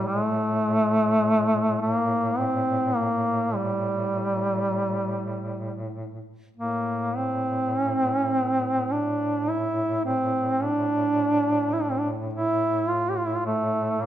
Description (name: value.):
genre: caucasian folk, Caucasian lament.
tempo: 51 BPM.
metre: 3/4.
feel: uneven beats, rubato.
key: A phrygian.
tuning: A4 = 439 Hz.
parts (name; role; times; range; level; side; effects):
warm duduk; melody; 0.0-14.1 s; G3 to G4; -23 LUFS; equal; none.
mellow duduk; drone; 0.0-14.1 s; A2; -31 LUFS; equal; none.
room: moderate recital hall reverb, RT60 1.4 s.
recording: minimal, uncompressed stereo recording.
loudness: -22 LUFS.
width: side -11 dB against mid.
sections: 0.0-14.1 A section.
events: none.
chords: none.